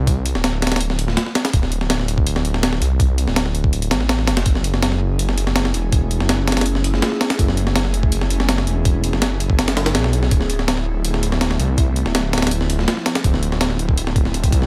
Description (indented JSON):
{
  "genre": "drum and bass, jungle",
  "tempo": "164 BPM",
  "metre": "4/4",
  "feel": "straight",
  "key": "unclear",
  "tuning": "A4 = 439 Hz",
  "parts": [
    { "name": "detuned saw bass", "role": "bass", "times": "0.0-14.7 s", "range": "D1 to C2", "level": "-22 LUFS", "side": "equal", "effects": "none" },
    { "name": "breakbeat sampler-style drum kit", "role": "drums", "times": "0.1-14.7 s", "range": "hi-hat, kick drum, snare drum", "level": "-21 LUFS", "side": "equal", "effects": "small room ambience" },
    { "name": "ethereal airy pad", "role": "sustained chords", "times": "5.0-14.3 s", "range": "F3 to G#4", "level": "-30 LUFS", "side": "equal", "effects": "ensemble chorus, built-in reverb, phaser" }
  ],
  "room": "little or no reverb",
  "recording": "none",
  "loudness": "-19 LUFS",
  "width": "mono",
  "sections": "0.0-14.7 A section",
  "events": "kick drops out 3.7-4.5",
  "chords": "0.0 D7(no3); 4.5 F#m7; 10.3 Dm7"
}